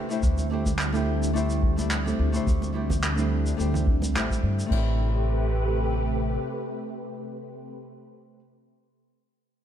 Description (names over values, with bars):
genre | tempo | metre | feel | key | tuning
sunset chillout | 107 BPM | 4/4 | swing 53% on 16ths | A minor | A4 = 439 Hz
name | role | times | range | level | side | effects
nylon-string guitar | accompaniment | 0.0-8.4 s | A3 to D5 | -31 LUFS | equal | auto-pan, tape echo
soft string machine | sustained chords | 0.0-7.7 s | C3 to B4 | -31 LUFS | equal | phaser, ensemble chorus
jazz brush drum kit | drums | 0.1-4.8 s | crash cymbal, handclaps, shaker | -33 LUFS | right 1 dB | none
upright bass | bass | 0.2-6.4 s | A1 to G2 | -26 LUFS | equal | tube saturation
electronic kick drum | drums | 0.2-4.8 s | none | -25 LUFS | equal | overdrive
congas | percussion | 0.4-4.4 s | none | -36 LUFS | right 2 dB | none
room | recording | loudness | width
light reverb, small room ambience | dark, warm production | -23 LUFS | side -10 dB against mid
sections
0.0-4.7 A section; 4.7-7.0 B section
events
filter sweep on string machine 0.0-4.7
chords
0.0 D9sus4; 4.7 Am9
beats
| 0.23 0.79 1.35 1.91 | 2.47 3.03 3.59 4.15 | 4.71 5.27 5.83 6.39